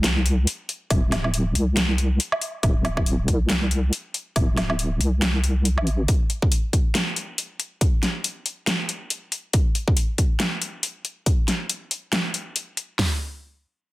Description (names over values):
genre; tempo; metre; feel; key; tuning
deep dubstep; 139 BPM; 4/4; swing 57% on 16ths, half-time; unclear; A4 = 441 Hz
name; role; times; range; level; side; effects
deep soft wobble bass; bass; 0.0-6.1 s; D1 to C2; -21 LUFS; equal; chorus
dubstep drum kit; drums; 0.0-12.9 s; hi-hat, snare drum, woodblock; -24 LUFS; equal; small room ambience
dubstep drum kit; drums; 0.9-13.1 s; hi-hat, kick drum, snare drum, toms; -20 LUFS; equal; small room ambience
room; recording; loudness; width
light reverb, digital ambience; dense, heavily limited modern master; -21 LUFS; side -18 dB against mid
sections
0.0-13.0 A section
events
none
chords
none